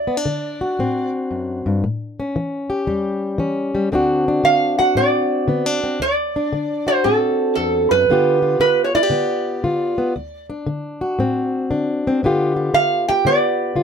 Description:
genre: acoustic country blues, solo or duo.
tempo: 116 BPM.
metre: 4/4.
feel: swing 66% on 8ths.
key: D mixolydian.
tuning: A4 = 441 Hz.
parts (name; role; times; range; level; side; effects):
metal-body resonator slide guitar; melody; 0.0-1.1, 4.4-13.8 s; A4 to G5; -17 LUFS; right 3 dB; none.
fingerpicked plugged-in steel-string acoustic guitar; accompaniment; 0.0-13.8 s; D2 to G4; -19 LUFS; left 2 dB; none.
room: light reverb.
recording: none.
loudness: -16 LUFS.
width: side -7 dB against mid.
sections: 0.0-3.9 A section; 3.9-13.8 A section.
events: none.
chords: 0.0 D7; 1.8 A7; 3.9 D7; 8.1 G7; 10.1 D7; 12.2 G7.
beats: 0.26 0.78 1.30 | 1.83 2.35 2.87 3.39 | 3.91 4.43 4.95 5.47 | 5.99 6.51 7.03 7.55 | 8.07 8.59 9.11 9.63 | 10.15 10.67 11.19 11.70 | 12.22 12.74 13.26 13.78.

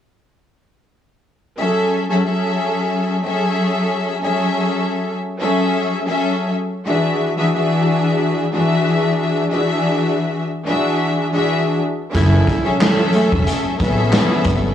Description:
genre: hip hop, boom-bap hip-hop.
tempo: 91 BPM.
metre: 4/4.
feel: swing 54% on 16ths.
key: F# minor.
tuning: A4 = 440 Hz.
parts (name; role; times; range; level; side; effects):
rich studio string section; accompaniment; 1.6-14.7 s; E3 to E5; -16 LUFS; left 1 dB; cassette tape.
raw garage drum kit; drums; 12.1-14.6 s; handclaps, hi-hat, kick drum, snare drum; -18 LUFS; equal; none.
growling tenor saxophone; melody; 12.2-14.7 s; A3 to E4; -22 LUFS; equal; analog delay.
upright bass; bass; 12.2-14.7 s; E1 to A1; -18 LUFS; equal; transformer saturation.
room: light reverb, studio reverb.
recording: dry, gritty hardware recording, transformer saturation, small room ambience.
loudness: -15 LUFS.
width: side -9 dB against mid.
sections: 1.6-12.1 A section; 12.1-14.7 B section.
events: none.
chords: 1.6 F#m7; 6.9 E7; 12.1 F#m7.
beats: | 1.60 2.26 2.92 3.58 | 4.24 4.90 5.56 6.21 | 6.87 7.53 8.19 8.85 | 9.51 10.17 10.83 11.49 | 12.15 12.81 13.47 14.13.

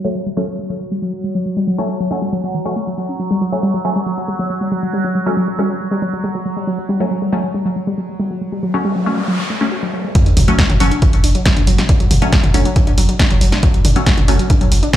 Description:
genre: driving peak-time techno.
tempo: 138 BPM.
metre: 4/4.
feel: straight.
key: F# phrygian.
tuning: A4 = 441 Hz.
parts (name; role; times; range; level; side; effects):
warbly dusty pluck; riff; 0.0-15.0 s; E3 to F#4; -20 LUFS; equal; chorus, sidechain pumping, digital delay.
filtered dub chord stab; stabs; 0.0-14.4 s; F#3 to C#4; -21 LUFS; left 1 dB; phaser, wide subtle chorus, sidechain pumping, ping-pong delay.
overtone-sweeping drone; drone; 0.0-10.2 s; F#3; -26 LUFS; right 1 dB; chorus, built-in reverb, phaser, sidechain pumping.
noise sweep and sub drop; sound effects; 8.8-11.9 s; none; -22 LUFS; equal; none.
electronic kick drum; drums; 10.2-15.0 s; none; -14 LUFS; equal; none.
punchy analog drum machine; drums; 10.2-15.0 s; hi-hat, snare drum, toms; -19 LUFS; equal; sidechain pumping on hats, sidechain pumping on cymbals, sidechain pumping on toms.
saturated sub bass; bass; 10.3-14.8 s; F#1; -16 LUFS; equal; tube saturation, sidechain pumping, low-pass filter.
room: light reverb, digital ambience.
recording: played on a big sound system in a bare room, large studio reverb, low-pass filter.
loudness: -14 LUFS.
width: side -12 dB against mid.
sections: 0.0-10.2 A section; 10.2-15.0 B section.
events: filter sweep on synth arpeggio sound 0.0-10.2; filter sweep 0.0-10.2; noise sweep 8.8-10.2; drop 10.2-15.0; impact 10.2-11.9.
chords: 0.0 F#m.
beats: 0.15 0.59 1.02 | 1.46 1.89 2.33 2.76 | 3.19 3.63 4.07 4.50 | 4.93 5.37 5.80 6.24 | 6.67 7.11 7.54 7.98 | 8.41 8.85 9.28 9.72 | 10.15 10.59 11.02 11.46 | 11.89 12.33 12.76 13.20 | 13.63 14.06 14.50 14.93.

